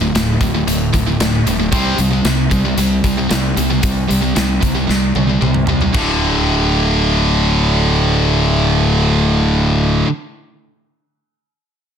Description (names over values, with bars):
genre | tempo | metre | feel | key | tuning
heavy metal | 114 BPM | 4/4 | straight | unclear | A4 = 440 Hz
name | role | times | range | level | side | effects
high-gain distorted guitar | riff | 0.0-10.1 s | D2 to C4 | -18 LUFS | left 10 dB | distortion
high-gain distorted guitar | riff | 0.0-10.1 s | D2 to C4 | -18 LUFS | right 10 dB | distortion
fuzz fingered electric bass | bass | 0.0-10.0 s | D1 to C2 | -18 LUFS | equal | overdrive
big rock drum kit | drums | 0.2-6.1 s | crash cymbal, hi-hat, kick drum, snare drum, toms | -20 LUFS | equal | none
room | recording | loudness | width
studio reverb | dense, heavily limited modern master | -13 LUFS | side -8 dB against mid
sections
0.0-5.9 A section; 5.9-10.2 B section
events
drum fill 4.9-5.9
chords
0.0 D5; 1.7 C5; 5.9 D5